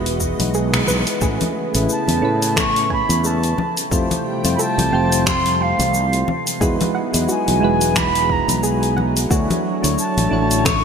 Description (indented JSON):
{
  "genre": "sunset chillout",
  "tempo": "89 BPM",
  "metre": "4/4",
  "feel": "swing 57% on 16ths",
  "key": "unclear",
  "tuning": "A4 = 440 Hz",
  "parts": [
    { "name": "soft electric-piano-like synth keys", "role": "accompaniment", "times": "0.0-10.8 s", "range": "G#3 to C#5", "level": "-22 LUFS", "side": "right 1 dB", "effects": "chorus, tremolo, auto-pan, digital delay" },
    { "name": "soft string machine", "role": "sustained chords", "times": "0.0-10.8 s", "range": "C3 to G5", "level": "-26 LUFS", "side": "right 1 dB", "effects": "phaser, ensemble chorus" },
    { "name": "soft round pluck", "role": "arpeggios", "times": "0.0-10.8 s", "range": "G#3 to G#5", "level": "-29 LUFS", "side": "right 2 dB", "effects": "chorus, digital delay" },
    { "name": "fretless electric bass", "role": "bass", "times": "0.0-10.8 s", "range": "E1 to A2", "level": "-21 LUFS", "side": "equal", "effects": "none" },
    { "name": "deep house drum kit", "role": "drums", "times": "0.1-10.8 s", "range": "finger snaps, hi-hat, shaker", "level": "-23 LUFS", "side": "left 1 dB", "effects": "gated reverb" },
    { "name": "electronic kick drum", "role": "drums", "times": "0.2-10.8 s", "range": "none", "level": "-24 LUFS", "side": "equal", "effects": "none" },
    { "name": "congas", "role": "percussion", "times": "0.4-10.8 s", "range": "none", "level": "-28 LUFS", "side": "left 4 dB", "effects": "none" },
    { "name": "silver concert flute", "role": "melody", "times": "1.9-10.8 s", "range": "F5 to C#6", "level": "-21 LUFS", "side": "equal", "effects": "digital delay" }
  ],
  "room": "wet lush hall reverb, RT60 2.7 s",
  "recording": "bright 1980s-style digital production",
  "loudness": "-16 LUFS",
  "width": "side -6 dB against mid",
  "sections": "0.0-1.2 A section; 1.2-10.8 B section",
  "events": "band accent 0.7-1.0",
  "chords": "0.0 Emaj9; 1.2 Amaj9; 3.6 Fmaj9; 6.3 Emaj9; 9.3 Dmaj9",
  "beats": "0.54 | 1.22 1.89 2.57 3.24 | 3.92 4.59 5.26 5.94 | 6.61 7.29 7.96 8.63 | 9.31 9.98 10.66"
}